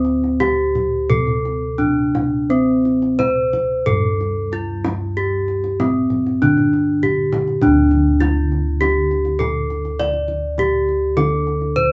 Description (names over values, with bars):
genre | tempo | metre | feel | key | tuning
Javanese gamelan | 86-102 BPM | 4/4 | straight | D slendro | A4 = 440 Hz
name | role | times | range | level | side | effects
gamelan-type bronze metallophone | melody | 0.0-11.9 s | C4-25c to D5 | -20 LUFS | equal | none
gamelan-type bossed gongs | bass | 0.0-11.9 s | D2 to D5 | -24 LUFS | equal | none
kendang | percussion | 0.0-11.9 s | none | -27 LUFS | equal | none
room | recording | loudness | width
wet small room reverb, RT60 0.6 s | band playing live in one room, nothing above 7.8 kHz | -18 LUFS | mono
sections
0.0-7.6 A section; 7.6-11.9 B section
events
none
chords
none